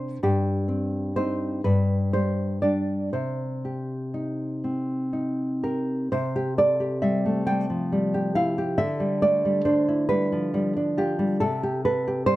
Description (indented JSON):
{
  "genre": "romantic piece for solo classical guitar",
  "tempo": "39-46 BPM (dotted quarters)",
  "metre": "6/8",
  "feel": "rubato",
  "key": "C minor, C major from 6.1 s",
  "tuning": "A4 = 439 Hz",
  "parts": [
    { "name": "nylon-string guitar", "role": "solo", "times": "0.0-12.4 s", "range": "G2 to G5", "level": "-22 LUFS", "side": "equal", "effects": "none" }
  ],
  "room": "light reverb",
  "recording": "close, detailed microphones",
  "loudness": "-22 LUFS",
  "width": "side -16 dB against mid",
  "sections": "0.0-6.1 A section; 6.1-12.4 B section",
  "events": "none",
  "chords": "0.2 Cm/G; 1.6 G5; 3.1 Cm; 6.1 C; 8.8 G7/D; 11.4 C5",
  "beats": "| 0.23 1.64 | 3.13 4.63 | 6.11 7.48 | 8.79 10.11 | 11.43"
}